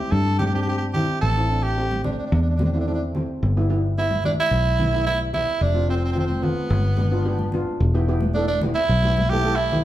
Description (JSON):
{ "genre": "calypso", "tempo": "110 BPM", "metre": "4/4", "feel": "straight", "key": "unclear", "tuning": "A4 = 439 Hz", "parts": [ { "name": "raspy tenor saxophone", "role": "melody", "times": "0.0-9.8 s", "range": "B3 to A4", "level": "-24 LUFS", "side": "right 2 dB", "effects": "none" }, { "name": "steel pan", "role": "accompaniment", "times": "0.0-9.8 s", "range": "G3 to A4", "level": "-28 LUFS", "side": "equal", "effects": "none" }, { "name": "fingered electric bass", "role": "bass", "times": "0.1-9.8 s", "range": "E1 to G2", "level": "-22 LUFS", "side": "equal", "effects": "none" }, { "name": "congas", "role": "percussion", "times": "0.4-9.8 s", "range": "none", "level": "-28 LUFS", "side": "equal", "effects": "none" } ], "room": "moderate large studio reverb, RT60 1.1 s", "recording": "band playing live in one room", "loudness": "-19 LUFS", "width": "side -13 dB against mid", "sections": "0.0-7.8 A section; 7.8-9.8 B section", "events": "none", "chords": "0.0 C; 1.2 Am7; 3.4 Em/G; 5.6 F; 6.7 G; 7.8 Em" }